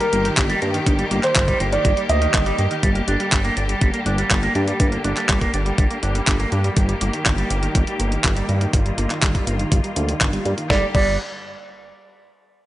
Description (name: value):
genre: italo disco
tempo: 122 BPM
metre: 4/4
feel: straight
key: unclear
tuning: A4 = 439 Hz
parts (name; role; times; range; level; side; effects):
- dark baby grand piano; melody; 0.0-2.7, 10.7-11.1 s; Bb4 to Eb5; -23 LUFS; right 2 dB; analog delay
- bright studio string section; sustained chords; 0.0-10.9 s; D3 to G4; -27 LUFS; left 2 dB; low-pass filter
- electric guitar with an envelope filter; arpeggios; 0.0-11.2 s; Eb3 to D4; -26 LUFS; right 2 dB; low-pass filter, analog delay
- clean 12-bit digital drum machine; drums; 0.0-11.0 s; crash cymbal, handclaps, hi-hat, snare drum; -24 LUFS; equal; overdrive
- chorused synth bass; bass; 0.1-11.2 s; G1 to G2; -22 LUFS; equal; tube saturation
- electronic kick drum; drums; 0.4-11.0 s; none; -20 LUFS; equal; overdrive
room: light reverb, digital ambience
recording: dry, gritty hardware recording, nothing above 10.9 kHz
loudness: -17 LUFS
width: side -15 dB against mid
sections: 0.0-10.7 A section; 10.7-12.7 B section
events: filter sweep on clean electric guitar 0.0-10.7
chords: 0.0 Eb/G; 2.8 Gm; 6.8 Eb/G; 10.7 N.C.